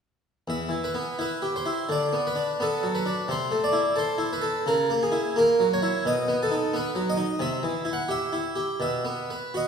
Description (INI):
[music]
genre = classical, baroque-style suite movement for harpsichord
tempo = 86 BPM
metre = 4/4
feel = uneven beats, rubato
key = E minor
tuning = A4 = 439 Hz
[part]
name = harpsichord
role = solo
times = 0.5-9.7 s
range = E2 to F#5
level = -23 LUFS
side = equal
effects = none
[sound]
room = wet recital hall reverb, RT60 1.7 s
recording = heard from further back in the room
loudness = -23 LUFS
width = side -6 dB against mid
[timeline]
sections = 0.5-9.7 A section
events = none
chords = 0.5 Em; 1.9 Bm/D; 3.3 Am/C; 4.7 F#7/C#; 6.1 B; 7.4 C; 8.8 B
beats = | 0.48 1.20 1.91 2.61 | 3.30 3.99 4.68 5.37 | 6.06 6.74 7.40 8.09 | 8.80 9.54